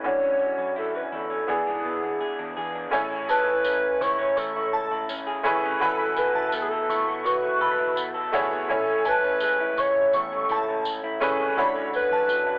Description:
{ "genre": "indie pop, bedroom pop", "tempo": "83 BPM", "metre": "4/4", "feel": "straight", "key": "A major", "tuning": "A4 = 439 Hz", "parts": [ { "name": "bright upright piano", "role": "accompaniment", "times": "0.0-12.6 s", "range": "E3 to G#5", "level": "-27 LUFS", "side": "equal", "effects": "cassette tape" }, { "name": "electric guitar through a small old amp", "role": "accompaniment", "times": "0.0-12.6 s", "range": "A2 to A4", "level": "-30 LUFS", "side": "equal", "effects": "lush chorus, warbly pitch drift, cassette tape" }, { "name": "vintage muted picked electric bass", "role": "bass", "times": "0.0-12.5 s", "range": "E1 to E3", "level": "-46 LUFS", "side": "equal", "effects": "none" }, { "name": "hollow clarinet-like synth lead", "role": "melody", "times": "0.1-12.6 s", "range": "G#4 to C#5", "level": "-25 LUFS", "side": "equal", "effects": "lush chorus, cassette tape, analog delay" }, { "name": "tambourine", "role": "percussion", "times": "2.9-12.5 s", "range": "none", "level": "-40 LUFS", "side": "left 1 dB", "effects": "none" }, { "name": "shimmering bell with halo", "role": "second line", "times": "3.3-12.3 s", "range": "A5 to C#6", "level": "-28 LUFS", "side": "equal", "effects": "ensemble chorus, analog chorus, cassette tape, analog delay" } ], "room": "wet small room reverb, RT60 0.5 s", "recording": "home recording on cassette, telephone sound", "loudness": "-22 LUFS", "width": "side -28 dB against mid", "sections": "0.0-2.9 A section; 2.9-12.6 B section", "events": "none", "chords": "0.0 Dmaj9; 1.5 E7; 2.9 Amaj7; 5.8 F#m11; 8.7 Amaj7; 11.6 Dmaj9", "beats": "| 0.04 0.76 1.48 2.21 | 2.93 3.65 4.37 5.09 | 5.81 6.53 7.25 7.97 | 8.69 9.41 10.13 10.85 | 11.57 12.29" }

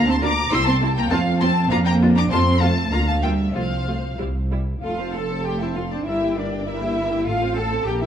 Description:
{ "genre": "quick classical-period movement for string orchestra", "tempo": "99 BPM", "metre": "2/4", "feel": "rubato", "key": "F major", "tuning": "A4 = 443 Hz", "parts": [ { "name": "rich symphonic violin section", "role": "melody", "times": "0.0-8.1 s", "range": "E5 to E6", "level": "-28 LUFS", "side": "left 4 dB", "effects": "none" }, { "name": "rich symphonic violin section", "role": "second line", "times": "0.0-8.1 s", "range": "C5 to C6", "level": "-26 LUFS", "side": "left 2 dB", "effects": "none" }, { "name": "rich chamber double bass section", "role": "bass", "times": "0.0-8.1 s", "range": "F1 to F2", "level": "-22 LUFS", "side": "right 1 dB", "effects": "none" }, { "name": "warm symphonic cello section", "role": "bass", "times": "0.0-8.1 s", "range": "F3 to A4", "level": "-24 LUFS", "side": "right 1 dB", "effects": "none" }, { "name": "rich studio viola section", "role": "accompaniment", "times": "0.2-8.1 s", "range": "G3 to C5", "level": "-29 LUFS", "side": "equal", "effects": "none" } ], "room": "moderate recital hall reverb, RT60 1.5 s", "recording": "dark, warm production", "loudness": "-18 LUFS", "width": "side -9 dB against mid", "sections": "0.0-4.8 A section; 4.8-8.1 B section", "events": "none", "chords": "0.0 Bb/D; 0.5 C; 1.1 F; 1.7 Bb/F; 2.3 F; 2.9 Bb/D; 3.5 F/C; 4.2 C; 4.8 F; 6.1 Edim/G; 7.3 F/A", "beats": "0.52 | 1.12 1.71 | 2.31 2.92 | 3.55 4.19 | 4.82 5.44 | 6.05 6.65 | 7.26 7.86" }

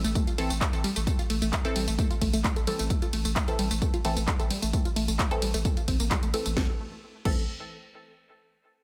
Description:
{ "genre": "driving peak-time techno", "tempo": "131 BPM", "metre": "4/4", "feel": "straight", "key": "A minor", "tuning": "A4 = 440 Hz", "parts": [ { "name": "unison pluck", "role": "riff", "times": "0.0-7.5 s", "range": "G3 to A4", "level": "-35 LUFS", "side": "equal", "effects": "sidechain pumping, delay" }, { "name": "filtered dub chord stab", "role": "stabs", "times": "0.0-7.4 s", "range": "E3 to A4", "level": "-37 LUFS", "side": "equal", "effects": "phaser, subtle chorus, sidechain pumping, delay" }, { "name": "saturated sub bass", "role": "bass", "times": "0.0-7.5 s", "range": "A1", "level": "-33 LUFS", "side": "equal", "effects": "overdrive, sidechain pumping, low-pass filter" }, { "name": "techno drum kit", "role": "drums", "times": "0.0-7.3 s", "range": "crash cymbal, handclaps, hi-hat, ride cymbal, snare drum, tambourine", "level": "-35 LUFS", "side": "equal", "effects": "sidechain pumping on hats, sidechain pumping on cymbals, sidechain pumping on perc" }, { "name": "electronic kick drum", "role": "drums", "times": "0.2-7.3 s", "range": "none", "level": "-30 LUFS", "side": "equal", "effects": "none" } ], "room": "light reverb", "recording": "none", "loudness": "-27 LUFS", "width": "mono", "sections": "0.0-6.6 A section; 6.6-8.4 B section", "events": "drop 0.0-6.6", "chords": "0.0 Am", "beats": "0.15 0.61 | 1.07 1.53 1.99 2.44 | 2.90 3.36 3.82 4.28 | 4.73 5.19 5.65 6.11 | 6.57 7.02" }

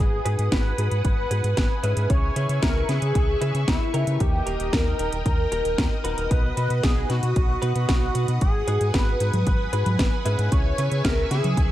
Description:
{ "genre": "italo disco", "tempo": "114 BPM", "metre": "4/4", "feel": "straight", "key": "G# minor", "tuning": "A4 = 440 Hz", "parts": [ { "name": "wide unison lead", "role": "melody", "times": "0.0-11.7 s", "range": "E4 to C#5", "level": "-28 LUFS", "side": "equal", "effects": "analog chorus, cassette tape, digital delay" }, { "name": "string machine, full ensemble", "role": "sustained chords", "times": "0.0-11.7 s", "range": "A#4 to D#6", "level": "-33 LUFS", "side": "left 1 dB", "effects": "phaser, ensemble chorus" }, { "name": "round analog bass", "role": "bass", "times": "0.0-11.7 s", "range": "D#1 to C#3", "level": "-25 LUFS", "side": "equal", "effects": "none" }, { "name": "direct-recorded clean electric guitar", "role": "stabs", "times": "0.3-11.5 s", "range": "A#3 to B4", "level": "-33 LUFS", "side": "right 1 dB", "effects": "analog chorus" }, { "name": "house drum kit", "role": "drums", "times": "0.3-11.7 s", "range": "congas, hi-hat, snare drum", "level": "-28 LUFS", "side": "equal", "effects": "none" }, { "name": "electronic kick drum", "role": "drums", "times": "0.5-11.7 s", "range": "none", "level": "-23 LUFS", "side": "equal", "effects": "none" } ], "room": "digital ambience", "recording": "dark, warm production", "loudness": "-20 LUFS", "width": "side -14 dB against mid", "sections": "0.0-11.7 A section", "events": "none", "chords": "0.0 G#m7; 2.1 C#m7; 4.2 D#; 6.3 B; 8.4 G#m7; 10.5 C#m7", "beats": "0.52 1.05 1.57 | 2.10 2.63 3.15 3.68 | 4.21 4.73 5.26 5.78 | 6.31 6.84 7.36 7.89 | 8.41 8.94 9.47 9.99 | 10.52 11.05 11.57" }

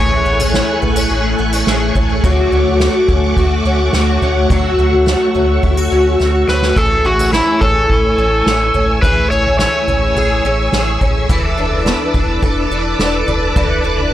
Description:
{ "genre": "dream pop", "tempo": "106 BPM", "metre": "4/4", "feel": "straight", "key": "A major", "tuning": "A4 = 440 Hz", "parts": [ { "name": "overdriven slide guitar", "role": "melody", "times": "0.0-0.8, 6.5-10.7 s", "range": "E4 to C#5", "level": "-16 LUFS", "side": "equal", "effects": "tape echo" }, { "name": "string machine, violas", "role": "sustained chords", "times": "0.0-14.1 s", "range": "A3 to F#6", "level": "-19 LUFS", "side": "equal", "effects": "ensemble chorus" }, { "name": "picked twelve-string acoustic guitar", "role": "arpeggios", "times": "0.0-14.1 s", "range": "E3 to A4", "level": "-17 LUFS", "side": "left 1 dB", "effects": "ensemble chorus, tape echo" }, { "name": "sub bass with octave", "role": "bass", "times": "0.0-14.1 s", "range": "E1 to D2", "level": "-18 LUFS", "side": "equal", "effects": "none" }, { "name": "soft-mallet drum kit", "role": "drums", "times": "0.4-14.1 s", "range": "kick drum, snare drum, toms", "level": "-18 LUFS", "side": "equal", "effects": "none" } ], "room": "light reverb", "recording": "none", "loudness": "-12 LUFS", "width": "side -12 dB against mid", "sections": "0.0-14.1 A section", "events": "drum fill 6.2-6.8", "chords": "0.0 Amaj7; 2.2 Dmaj7; 6.8 Amaj7; 11.3 E7sus4", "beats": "0.54 1.10 1.67 | 2.24 2.80 3.37 3.94 | 4.50 5.07 5.63 6.20 | 6.77 7.33 7.90 8.46 | 9.03 9.60 10.16 10.73 | 11.29 11.86 12.43 12.99 | 13.56 14.12" }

